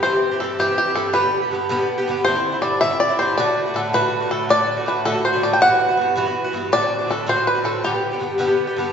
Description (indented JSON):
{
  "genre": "celtic folk",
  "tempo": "108 BPM (dotted quarters)",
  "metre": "6/8",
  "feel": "straight",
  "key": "G major",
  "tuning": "A4 = 440 Hz",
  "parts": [
    { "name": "bluegrass banjo", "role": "melody", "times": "0.0-8.5 s", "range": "G4 to G5", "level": "-18 LUFS", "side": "equal", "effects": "none" },
    { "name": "Irish bouzouki", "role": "accompaniment", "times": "0.0-8.9 s", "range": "G2 to G4", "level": "-21 LUFS", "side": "equal", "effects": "none" }
  ],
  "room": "wet concert hall reverb, RT60 2.2 s",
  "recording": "recorded in a church or concert hall, nothing above 7.7 kHz",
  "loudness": "-17 LUFS",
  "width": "side -7 dB against mid",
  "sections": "0.0-8.9 A section",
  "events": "none",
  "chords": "0.0 C; 1.1 G; 2.3 Cadd9; 3.4 D; 5.6 Emadd9; 6.7 D7; 7.8 G"
}